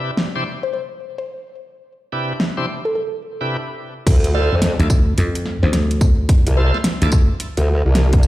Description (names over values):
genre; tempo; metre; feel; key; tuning
glitch hop; 108 BPM; 4/4; swing 63% on 16ths; D dorian; A4 = 440 Hz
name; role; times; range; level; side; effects
woody wave-folded pluck; melody; 0.0-7.0 s; A4 to D5; -27 LUFS; left 1 dB; chorus, digital delay
bright tonewheel organ; stabs; 0.0-7.1 s; C3 to D5; -25 LUFS; equal; overdrive, slow rotary speaker, sidechain pumping, digital delay
pop drum kit; drums; 0.2-8.3 s; crash cymbal, hi-hat, snare drum, tambourine; -23 LUFS; equal; overdrive
formant-sweep wobble bass; bass; 4.1-8.3 s; C2 to F2; -15 LUFS; equal; chorus, overdrive
electronic kick drum; drums; 4.1-8.2 s; none; -14 LUFS; equal; overdrive
dry thumbed slap bass; bass; 4.8-7.3 s; D2 to F2; -17 LUFS; equal; none
room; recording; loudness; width
light reverb, digital ambience; played on a big sound system in a bare room, large studio reverb; -16 LUFS; side -16 dB against mid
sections
0.0-4.1 A section; 4.1-8.3 B section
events
drop 4.1-8.3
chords
0.0 Cmaj7; 4.1 Dm7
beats
0.18 0.73 1.29 | 1.84 2.40 2.96 3.51 | 4.07 4.62 5.18 5.73 | 6.29 6.84 7.40 7.96